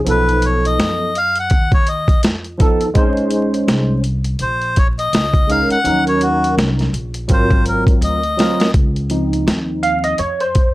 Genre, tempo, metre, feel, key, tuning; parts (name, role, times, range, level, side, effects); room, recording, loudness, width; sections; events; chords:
hip hop, jazz-hop; 83 BPM; 4/4; swing 59% on 16ths; Db major; A4 = 440 Hz
barky tine electric piano; accompaniment; 0.0-10.7 s; F3 to F5; -18 LUFS; right 1 dB; ensemble chorus, plate reverb
upright bass; bass; 0.0-10.7 s; Ab1 to Gb2; -22 LUFS; equal
melodica; melody; 0.1-8.7 s; Gb4 to Gb5; -18 LUFS; left 1 dB; plate reverb
boom bap sampler-style drum kit; drums; 0.1-10.7 s; hi-hat, kick drum, snare drum; -16 LUFS; equal
light reverb; dry, gritty hardware recording, vinyl crackle; -13 LUFS; side -18 dB against mid
0.0-8.7 A section; 8.7-10.7 A section
melodica solo 0.0-8.7; drum fill 8.0-8.7; tine electric piano solo 8.7-10.7
0.1 Cb7#11; 3.0 Bbm11; 5.8 Ebm7; 7.3 Ab13; 8.7 Dbmaj7